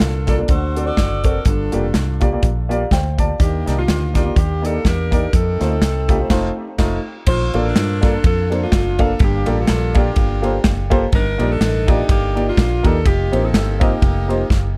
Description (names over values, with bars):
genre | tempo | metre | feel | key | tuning
uptempo gospel | 124 BPM | 4/4 | swing 56% on 8ths | unclear | A4 = 445 Hz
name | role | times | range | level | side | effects
bright saxophone section | melody | 0.0-14.7 s | A3 to D5 | -26 LUFS | equal | analog delay
warm concert grand piano | accompaniment | 0.0-14.4 s | G2 to A5 | -25 LUFS | equal | analog delay
fingered electric bass | bass | 0.0-14.8 s | F1 to G2 | -23 LUFS | equal | none
modern studio drum kit | drums | 0.0-14.6 s | crash cymbal, hi-hat, kick drum, ride cymbal, snare drum | -20 LUFS | equal | none
room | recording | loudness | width
studio reverb | echo-heavy mix | -17 LUFS | mono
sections
0.0-7.3 A section; 7.3-14.8 B section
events
grand piano fill 2.4-3.4; band accent 6.3-7.3; drum fill 14.5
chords
0.5 D7; 1.5 Gm7; 3.4 Ebmaj7; 5.3 F7; 7.3 Gm9; 11.1 Ebmaj9/G; 13.1 F7sus4; 14.0 F9sus4